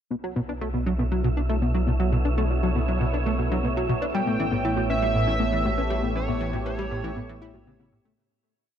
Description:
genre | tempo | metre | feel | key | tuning
ambient, sequencer-driven space music | 119 BPM | 4/4 | straight | B minor | A4 = 440 Hz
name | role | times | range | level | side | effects
sweeping resonant pad | sustained chords | 0.1-8.2 s | A2 to C#5 | -31 LUFS | right 1 dB | chorus
warbly dusty pluck | arpeggios | 0.1-8.2 s | A3 to B4 | -35 LUFS | moving between left 6 dB and right 4 dB | chorus, auto-pan, tape echo
plucky analog bass | riff | 0.1-8.2 s | A2 to E4 | -27 LUFS | equal | analog chorus, tape echo
warm sub bass | bass | 0.1-8.2 s | A1 to B1 | -27 LUFS | equal | none
wind-like tuned noise texture | texture | 0.5-8.2 s | E4 to E5 | -35 LUFS | right 2 dB | built-in reverb
pulse-width lead | melody | 4.1-7.9 s | C#5 to G5 | -29 LUFS | right 2 dB | chorus, tape echo
room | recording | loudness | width
moderate plate reverb, RT60 3.0 s | dreamy mix soaked in reverb | -22 LUFS | side -9 dB against mid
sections
0.1-8.2 A section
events
fade-in on analog synth pad 0.1-8.2; fade-out 5.5-8.2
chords
0.1 Bm7; 4.1 A7

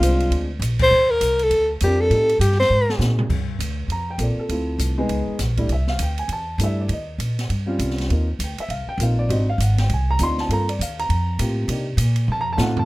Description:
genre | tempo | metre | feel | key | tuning
jazz, small-group swing and bop | 200 BPM | 4/4 | swing 61% on 8ths | G minor | A4 = 439 Hz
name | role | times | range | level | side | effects
breathy alto saxophone | melody | 0.0-3.0 s | F4 to C5 | -17 LUFS | equal | none
dark upright piano | accompaniment | 0.0-12.9 s | G3 to C6 | -25 LUFS | equal | none
upright bass | bass | 0.0-12.9 s | Ab1 to C3 | -21 LUFS | equal | none
open jazz drum kit | drums | 0.0-12.8 s | crash cymbal, hi-hat, kick drum, ride cymbal, snare drum, toms | -30 LUFS | right 1 dB | none
room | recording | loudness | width
small room ambience | rough home demo mix | -18 LUFS | side -19 dB against mid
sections
0.0-3.3 A section; 3.3-12.9 B section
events
band accent 0.8; drum fill 2.7-3.3, 12.3-12.9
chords
0.0 Bb7; 0.9 Ebmaj13; 2.1 Am7b5; 2.7 Ab9; 3.3 Gm11; 4.5 Dm9; 5.1 C#sus2; 5.7 C69; 6.9 Eb13; 8.1 Ebmaj13; 9.3 Ab7#11; 10.5 Gm11; 11.7 Cm7; 12.3 F7

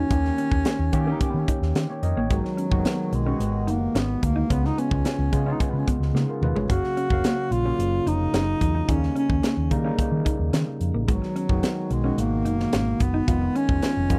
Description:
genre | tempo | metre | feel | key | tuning
polished 1980s jazz-funk pop | 109 BPM | 4/4 | straight | Eb minor | A4 = 440 Hz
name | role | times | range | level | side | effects
mellow bass clarinet | melody | 0.0-14.2 s | Gb3 to Gb4 | -29 LUFS | equal | none
overdriven tine electric piano | accompaniment | 0.0-14.2 s | Cb3 to F5 | -32 LUFS | equal | lush chorus
mellow electric guitar | riff | 0.0-14.1 s | Ab3 to Gb4 | -32 LUFS | equal | lush chorus
hollow-body short-scale fingered electric bass | bass | 0.0-14.2 s | F1 to Eb3 | -27 LUFS | equal | none
crisp fusion drum kit | drums | 0.1-14.2 s | hi-hat, kick drum, snare drum, toms | -28 LUFS | equal | none
room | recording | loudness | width
little or no reverb | none | -24 LUFS | mono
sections
0.0-14.2 A section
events
drum fill 6.1-6.7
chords
0.1 Eb7; 2.3 Abm7; 4.5 Db7; 6.7 Gbmaj7; 8.9 Eb7; 11.1 Abm7; 13.3 Fm7b5

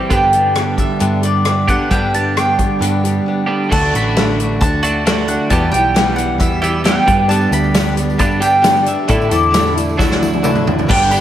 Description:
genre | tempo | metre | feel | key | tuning
folk rock and heartland rock | 134 BPM | 4/4 | straight | G major | A4 = 439 Hz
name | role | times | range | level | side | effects
picked steel-string acoustic guitar | accompaniment | 0.0-11.2 s | E2 to A4 | -21 LUFS | left 3 dB | none
twelve-string electric guitar | riff | 0.0-11.2 s | E2 to A4 | -19 LUFS | right 4 dB | spring reverb, slapback echo
mandolin | melody | 0.1-11.2 s | D5 to B5 | -17 LUFS | equal | slapback echo
hollow-body short-scale picked electric bass | bass | 0.1-11.2 s | G1 to A2 | -20 LUFS | equal | none
natural country drum kit | drums | 0.1-11.2 s | crash cymbal, hi-hat, kick drum, rim click, snare drum, toms | -18 LUFS | equal | none
reed electric piano | accompaniment | 7.3-11.2 s | E4 to E5 | -26 LUFS | left 3 dB | fast tremolo, slapback echo
tambourine | percussion | 7.3-11.2 s | none | -34 LUFS | right 4 dB | none
room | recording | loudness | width
wet lush hall reverb, RT60 2.2 s | big arena sound | -12 LUFS | side -11 dB against mid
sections
0.0-3.7 A section; 3.7-10.9 B section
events
drum fill 10.0-10.9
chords
0.1 G; 3.7 D; 5.5 Em; 7.1 G; 9.1 Asus4; 10.0 Dadd9

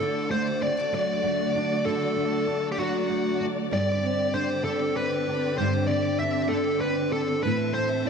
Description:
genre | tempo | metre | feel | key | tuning
pop | 65 BPM (dotted quarters) | 6/8 | straight | unclear | A4 = 440 Hz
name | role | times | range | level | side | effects
high-gain lead guitar | melody | 0.0-8.1 s | F#4 to E5 | -27 LUFS | equal | distortion, tape echo
flamenco guitar | accompaniment | 0.0-8.1 s | G2 to E4 | -27 LUFS | equal | double-tracked left and right
warm studio string section | sustained chords | 0.0-8.1 s | D3 to E5 | -31 LUFS | equal | none
room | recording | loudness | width
moderate echo chamber reverb, RT60 1.3 s, small room ambience | dark, warm production | -23 LUFS | side -6 dB against mid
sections
0.0-8.1 A section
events
none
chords
0.0 D; 3.7 Gsus4; 7.4 Am

